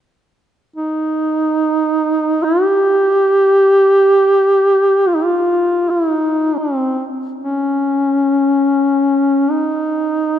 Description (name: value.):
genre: caucasian folk, Caucasian lament.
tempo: free time.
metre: none.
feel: none.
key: unclear.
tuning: A4 = 440 Hz.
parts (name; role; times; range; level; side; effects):
mellow duduk; solo; 0.8-10.4 s; C4 to G4; -12 LUFS; equal; none.
room: wet church reverb, RT60 2.9 s.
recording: nothing above 10.5 kHz.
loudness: -12 LUFS.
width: side -10 dB against mid.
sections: 0.0-10.4 A section.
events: none.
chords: none.